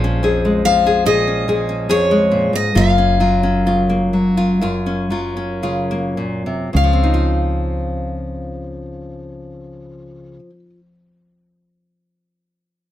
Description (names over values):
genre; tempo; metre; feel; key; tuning
acoustic folk-pop ballad; 52-74 BPM; 4/4; straight; Db major; A4 = 441 Hz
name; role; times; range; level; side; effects
nylon-string guitar; accompaniment; 0.0-10.8 s; F2 to Ab4; -18 LUFS; left 1 dB; none
woody fretless electric bass; bass; 0.0-10.4 s; Gb1 to Db2; -20 LUFS; right 1 dB; wide subtle chorus
picked steel-string acoustic guitar; melody; 0.7-10.4 s; Db5 to F5; -19 LUFS; left 2 dB; none
room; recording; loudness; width
moderate studio reverb, RT60 0.6 s; none; -15 LUFS; side -12 dB against mid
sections
0.0-6.7 A section; 6.7-11.3 B section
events
slowing down 0.0-6.7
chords
0.0 Bbm7; 2.7 Gbmaj7; 6.7 Dbmaj9